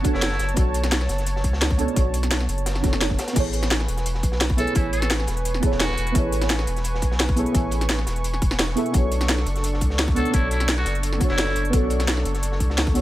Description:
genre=liquid drum and bass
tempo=172 BPM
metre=4/4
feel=straight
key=unclear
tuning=A4 = 440 Hz
part: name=deep mellow chord stab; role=accompaniment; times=0.0-13.0 s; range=B3 to E5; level=-27 LUFS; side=right 2 dB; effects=chorus, phaser
part: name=warm analog pad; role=sustained chords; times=0.0-13.0 s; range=D4 to C#6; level=-31 LUFS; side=right 1 dB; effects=chorus
part: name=saturated sub bass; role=bass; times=0.0-13.0 s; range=E1 to C#2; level=-24 LUFS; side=equal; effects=tube saturation
part: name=crunchy breakbeat drum kit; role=drums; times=0.0-13.0 s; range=hi-hat, snare drum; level=-34 LUFS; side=equal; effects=high-pass filter on hats, high-pass filter on snare, high-pass filter on room
part: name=drum and bass drum kit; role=drums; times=0.0-13.0 s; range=crash cymbal, hi-hat, snare drum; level=-25 LUFS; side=equal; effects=none
part: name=electronic kick drum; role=drums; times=0.0-12.9 s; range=none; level=-22 LUFS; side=equal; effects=none
part: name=trumpet with metal mute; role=melody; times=0.1-0.5, 4.6-6.2, 10.2-11.6 s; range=E4 to A4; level=-31 LUFS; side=equal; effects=dub echo
room=little or no reverb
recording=none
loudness=-20 LUFS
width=side -15 dB against mid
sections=0.0-13.0 A section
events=none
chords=0.0 Bm9; 3.4 Amaj9; 8.9 Bm9

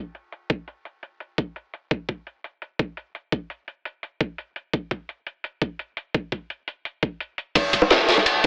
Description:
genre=drum and bass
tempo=170 BPM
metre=4/4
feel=straight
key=none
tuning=none
part: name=drum and bass drum kit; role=drums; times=0.1-8.5 s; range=crash cymbal, hi-hat, snare drum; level=-25 LUFS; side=equal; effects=overdrive, low-pass filter on snare, low-pass filter on hats, low-pass filter on cymbals
part: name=electronic kick drum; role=drums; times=0.5-8.5 s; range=none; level=-24 LUFS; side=equal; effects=overdrive
part: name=crunchy breakbeat drum kit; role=drums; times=7.6-8.5 s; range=ride cymbal, snare drum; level=-18 LUFS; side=equal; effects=high-pass filter on cymbals, high-pass filter on snare, high-pass filter on room
part: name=bongos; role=percussion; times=7.6-8.2 s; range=none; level=-23 LUFS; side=equal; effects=none
room=moderate recital hall reverb, RT60 1.5 s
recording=AM radio sound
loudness=-23 LUFS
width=side -32 dB against mid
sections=0.0-7.6 A section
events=none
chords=none

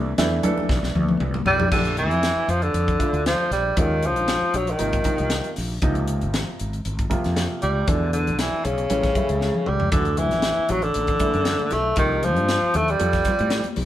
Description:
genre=electric jazz fusion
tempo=117 BPM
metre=4/4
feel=swing 53% on 16ths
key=Bb lydian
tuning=A4 = 441 Hz
part: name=warm baby grand piano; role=accompaniment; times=0.0-13.9 s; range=B2 to C5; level=-28 LUFS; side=right 2 dB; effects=none
part: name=mellow fretless electric bass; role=bass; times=0.0-13.9 s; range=Ab1 to A2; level=-25 LUFS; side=equal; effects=none
part: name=crisp fusion drum kit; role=drums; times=0.2-13.9 s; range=crash cymbal, hi-hat, kick drum, snare drum, toms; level=-26 LUFS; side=left 1 dB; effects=none
part: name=congas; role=percussion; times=0.4-1.7, 10.2-13.9 s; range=none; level=-30 LUFS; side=left 5 dB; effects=none
part: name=warm tenor saxophone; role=melody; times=1.5-13.8 s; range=Db3 to A3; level=-22 LUFS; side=equal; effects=none
room=moderate stone room reverb, RT60 1.1 s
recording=band playing live in one room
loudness=-19 LUFS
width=side -12 dB against mid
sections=0.0-1.7 A section; 1.7-13.9 B section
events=drum fill 0.7-1.7, 9.4-9.9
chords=0.0 Cmaj9; 1.7 Bbmaj7; 3.8 Eb5; 4.8 Ab; 5.8 Dbmaj9; 7.9 E5; 8.9 A7; 9.9 Dadd9; 12.0 Cm7; 13.0 Fadd9

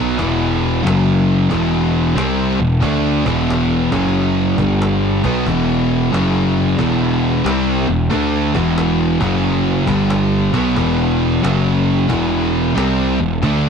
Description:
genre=stoner and doom metal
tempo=91 BPM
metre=4/4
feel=swing 66% on 8ths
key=E minor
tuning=A4 = 440 Hz
part: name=cranked stack guitar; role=riff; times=0.0-13.7 s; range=E2 to D4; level=-21 LUFS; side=equal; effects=overdrive
part: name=thick fuzz guitar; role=riff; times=0.0-13.7 s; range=E2 to D4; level=-19 LUFS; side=left 11 dB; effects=distortion
part: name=thick fuzz guitar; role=riff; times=0.0-13.7 s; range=E2 to D4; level=-19 LUFS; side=right 9 dB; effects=distortion
part: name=fuzz picked electric bass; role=bass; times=0.0-13.7 s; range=E1 to D2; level=-21 LUFS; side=equal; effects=overdrive, tube saturation
part: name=cajon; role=drums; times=0.2-13.6 s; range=none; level=-26 LUFS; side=equal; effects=none
room=little or no reverb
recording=dry, close 1970s-style studio recording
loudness=-14 LUFS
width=side -6 dB against mid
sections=0.0-13.7 A section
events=none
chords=0.0 E5; 0.8 F#5; 1.5 Em; 3.8 F#5; 4.5 G5; 5.1 E5; 6.1 F#5; 6.8 Em; 9.1 F#5; 9.8 G5; 10.4 E5; 11.4 F#5; 12.1 Em

